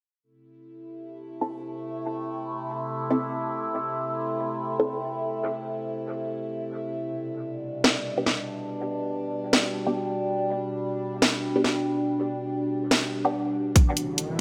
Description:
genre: deep dubstep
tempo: free time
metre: none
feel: none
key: A minor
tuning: A4 = 440 Hz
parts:
  - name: overtone-sweeping drone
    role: sustained chords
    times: 0.7-14.4 s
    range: B2 to E4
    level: -31 LUFS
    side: equal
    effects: chorus, built-in reverb
  - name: filtered dub chord stab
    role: stabs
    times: 1.4-4.9, 8.2-13.3 s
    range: B3 to A4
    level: -31 LUFS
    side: equal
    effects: phaser, subtle chorus, vintage 12-bit sampler grit, dub echo
  - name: garage drum kit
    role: drums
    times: 7.8-14.3 s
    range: hi-hat, snare drum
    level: -25 LUFS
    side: equal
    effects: low-pass filter on snare, small room ambience, low-pass filter on hats
  - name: soft dub sub bass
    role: bass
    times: 13.8-14.4 s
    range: A1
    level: -39 LUFS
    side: equal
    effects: high-pass filter
  - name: electronic kick drum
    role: drums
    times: 13.8-13.9 s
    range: none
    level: -19 LUFS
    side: equal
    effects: small room ambience
  - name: riser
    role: sound effects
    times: 14.0-14.4 s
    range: none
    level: -37 LUFS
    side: equal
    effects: none
room: wet lush hall reverb, RT60 1.7 s, digital ambience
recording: none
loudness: -28 LUFS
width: mono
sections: 0.2-13.8 A section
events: riser 14.0-14.4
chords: 0.2 Am; 7.0 G; 13.8 Am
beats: free time

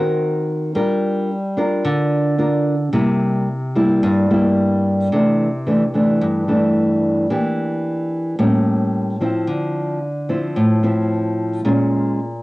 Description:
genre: bossa nova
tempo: 110 BPM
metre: 4/4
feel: straight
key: C major from 5.1 s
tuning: A4 = 440 Hz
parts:
  - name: nylon-string guitar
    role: solo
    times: 0.0-12.4 s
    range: G2 to Bb4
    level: -16 LUFS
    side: equal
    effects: cassette tape
room: moderate studio reverb, RT60 0.6 s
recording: home recording on cassette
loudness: -16 LUFS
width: side -20 dB against mid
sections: 0.0-5.1 A section; 5.1-12.4 B section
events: none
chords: 0.0 Ab9 (rootless); 0.8 Gm7; 2.9 C7; 5.1 C69; 7.3 Em7b5; 8.4 A7b9; 9.5 Dm9; 11.7 Bbm7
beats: 0.21 | 0.76 1.30 1.85 2.39 | 2.94 3.48 4.03 4.57 | 5.12 5.66 6.21 6.75 | 7.29 7.84 8.38 8.93 | 9.47 10.02 10.56 11.11 | 11.65 12.19

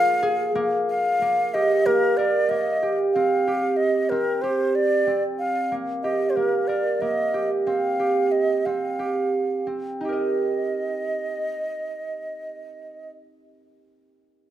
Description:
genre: contemporary instrumental, contemporary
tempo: 184 BPM (eighths)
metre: 7/8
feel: straight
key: Eb major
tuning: A4 = 445 Hz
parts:
  - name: wooden flute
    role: melody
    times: 0.0-13.1 s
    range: Bb4 to F5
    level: -24 LUFS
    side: equal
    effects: none
  - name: concert harp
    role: arpeggios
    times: 0.0-13.4 s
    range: Bb3 to Eb5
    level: -23 LUFS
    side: right 2 dB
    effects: none
room: moderate recital hall reverb, RT60 1.8 s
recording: minimal, uncompressed stereo recording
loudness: -21 LUFS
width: side -11 dB against mid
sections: 0.9-10.0 A section; 10.0-12.4 B section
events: slowing down 5.4-10.0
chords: 0.0 Bb7(no3); 0.9 Bbsus4; 3.1 Fsus2; 10.0 Eb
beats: 0.23 0.56 | 0.89 1.21 1.54 1.86 2.18 2.50 2.83 | 3.15 3.47 3.79 4.11 4.43 4.75 5.07 | 5.40 5.72 6.04 6.37 6.69 7.01 7.34 | 7.66 7.99 8.32 8.66 8.99 9.33 9.67 | 10.01 10.34 10.68 11.01 11.35 11.68 12.01

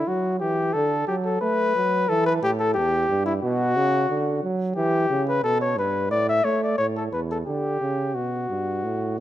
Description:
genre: classical, renaissance-style consort dance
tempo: 89 BPM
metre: 4/4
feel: straight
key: D major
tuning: A4 = 441 Hz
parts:
  - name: dark cornet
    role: melody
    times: 0.0-9.2 s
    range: E4 to E5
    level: -23 LUFS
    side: left 2 dB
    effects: none
  - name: warm trombone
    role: bass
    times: 0.0-9.2 s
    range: E2 to A3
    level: -25 LUFS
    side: right 3 dB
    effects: none
room: moderate recital hall reverb, RT60 1.7 s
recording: close, detailed microphones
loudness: -21 LUFS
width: side -13 dB against mid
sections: 0.0-9.2 A section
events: none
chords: 0.0 N.C.; 0.7 D; 2.1 Em; 3.4 Bm; 4.8 Em; 6.1 Aadd11; 6.8 A5; 7.5 D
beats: 0.08 0.75 1.42 | 2.09 2.76 3.43 4.10 | 4.77 5.44 6.11 6.79 | 7.47 8.15 8.84

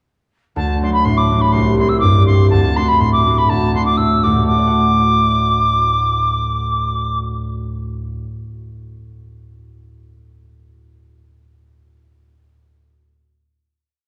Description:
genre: celtic folk, Celtic polka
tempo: 123 BPM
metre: 2/4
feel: swing 54% on 8ths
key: D mixolydian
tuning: A4 = 440 Hz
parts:
  - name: bright reedy wooden whistle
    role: melody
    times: 0.6-7.2 s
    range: A5 to E6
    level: -19 LUFS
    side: equal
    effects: none
  - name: concert harp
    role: accompaniment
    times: 0.6-8.2 s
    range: C2 to F#5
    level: -18 LUFS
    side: equal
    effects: none
room: wet recital hall reverb, RT60 1.6 s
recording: recorded in a church or concert hall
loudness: -15 LUFS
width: mono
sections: 0.6-4.5 A section; 4.5-6.4 final chord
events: none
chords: 0.6 D; 1.5 C; 2.5 D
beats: | 0.56 1.05 | 1.54 2.02 | 2.51 3.00 | 3.49 3.98 | 4.46 4.95 | 5.44 5.93

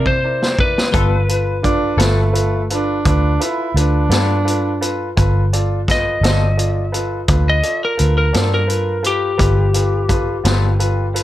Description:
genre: slow blues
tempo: 57 BPM (dotted quarters)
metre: 12/8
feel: straight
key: unclear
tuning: A4 = 440 Hz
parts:
  - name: lightly driven lead guitar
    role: melody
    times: 0.0-11.1 s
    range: G4 to Eb5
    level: -20 LUFS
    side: left 2 dB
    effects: none
  - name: clean electric guitar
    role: accompaniment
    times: 0.0-10.7 s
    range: G3 to A4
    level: -24 LUFS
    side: left 5 dB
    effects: harmonic tremolo
  - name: clear upright piano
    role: accompaniment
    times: 0.0-11.2 s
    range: E4 to D5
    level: -23 LUFS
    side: equal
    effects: none
  - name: vintage muted fingered electric bass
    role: bass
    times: 0.0-11.2 s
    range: G1 to C3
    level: -17 LUFS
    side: equal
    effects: none
  - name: vintage drum kit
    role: drums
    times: 0.1-11.2 s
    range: hi-hat, kick drum, snare drum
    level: -20 LUFS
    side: equal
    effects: none
  - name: breathy tenor saxophone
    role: second line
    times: 1.6-5.1 s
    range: A3 to E4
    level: -20 LUFS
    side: right 3 dB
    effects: none
room: light reverb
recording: none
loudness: -14 LUFS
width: side -14 dB against mid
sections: 0.0-11.2 A section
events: drum fill 0.0-0.9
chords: 0.0 C9; 0.9 G9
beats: | 0.94 1.99 3.05 4.11 | 5.17 6.22 7.28 8.34 | 9.39 10.45

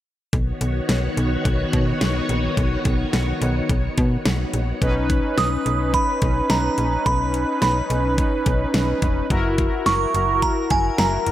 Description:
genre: synth-pop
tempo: 107 BPM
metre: 4/4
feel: straight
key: B major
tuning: A4 = 441 Hz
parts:
  - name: string machine, violins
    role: sustained chords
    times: 0.3-4.8 s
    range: D#3 to C#5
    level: -25 LUFS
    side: left 1 dB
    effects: ensemble chorus
  - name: slap-like FM bass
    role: bass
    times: 0.3-11.3 s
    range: E1 to B2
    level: -23 LUFS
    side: equal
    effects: none
  - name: pop drum kit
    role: drums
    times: 0.3-11.3 s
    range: hi-hat, kick drum, snare drum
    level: -24 LUFS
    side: equal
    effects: none
  - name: analog synth brass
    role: accompaniment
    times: 4.8-11.3 s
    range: C#4 to B4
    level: -23 LUFS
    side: left 1 dB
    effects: chorus
  - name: glassy synth bell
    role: melody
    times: 5.4-11.3 s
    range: G#5 to D#6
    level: -22 LUFS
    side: right 4 dB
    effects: chorus, tremolo, tape echo
room: moderate concert hall reverb, RT60 2.0 s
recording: none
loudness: -18 LUFS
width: side -13 dB against mid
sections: 0.3-4.8 A section; 4.8-11.3 B section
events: none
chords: 0.3 Badd9; 9.3 F#7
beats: | 0.33 0.89 1.45 2.01 | 2.57 3.13 3.70 4.26 | 4.82 5.38 5.94 6.50 | 7.06 7.62 8.18 8.74 | 9.30 9.86 10.43 10.98

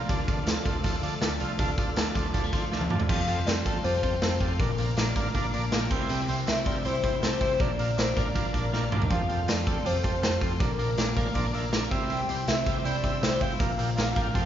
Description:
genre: jangly indie pop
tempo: 160 BPM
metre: 4/4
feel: straight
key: F major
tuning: A4 = 440 Hz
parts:
  - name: clean electric guitar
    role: accompaniment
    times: 0.0-14.5 s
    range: Bb2 to C5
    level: -38 LUFS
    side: right 4 dB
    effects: none
  - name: overdriven combo organ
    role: accompaniment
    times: 0.0-14.5 s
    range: C4 to G5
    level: -35 LUFS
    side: right 4 dB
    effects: none
  - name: phased string machine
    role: sustained chords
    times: 0.0-14.5 s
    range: A4 to E6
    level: -39 LUFS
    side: equal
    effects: ensemble chorus, phaser
  - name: twelve-string electric guitar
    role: arpeggios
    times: 0.0-14.5 s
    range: Bb2 to Bb4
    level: -34 LUFS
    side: left 4 dB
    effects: none
  - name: vintage muted fingered electric bass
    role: bass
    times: 0.0-14.5 s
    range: F1 to D3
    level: -32 LUFS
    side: equal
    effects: none
  - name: raw garage drum kit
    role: drums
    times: 0.1-14.4 s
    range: crash cymbal, hi-hat, kick drum, snare drum, toms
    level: -28 LUFS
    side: equal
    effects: none
  - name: hollow clarinet-like synth lead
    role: melody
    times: 3.1-14.5 s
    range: Bb4 to G5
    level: -31 LUFS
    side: left 2 dB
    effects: chorus
room: moderate recital hall reverb, RT60 1.7 s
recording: recorded in a church or concert hall, nothing above 7.5 kHz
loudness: -24 LUFS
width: side -10 dB against mid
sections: 0.0-3.1 A section; 3.1-14.5 B section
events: drum fill 2.7-3.1, 8.7-9.1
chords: 0.1 Dm; 3.1 Fadd9; 4.6 Bb; 5.9 C; 7.6 Bb; 9.1 Fadd9; 10.6 Bb; 11.9 C; 13.6 Bb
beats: | 0.09 0.47 0.84 1.22 | 1.59 1.97 2.35 2.72 | 3.10 3.47 3.85 4.22 | 4.60 4.97 5.35 5.72 | 6.10 6.48 6.85 7.23 | 7.60 7.98 8.35 8.73 | 9.10 9.48 9.85 10.23 | 10.60 10.98 11.35 11.73 | 12.10 12.48 12.85 13.22 | 13.60 13.97 14.35

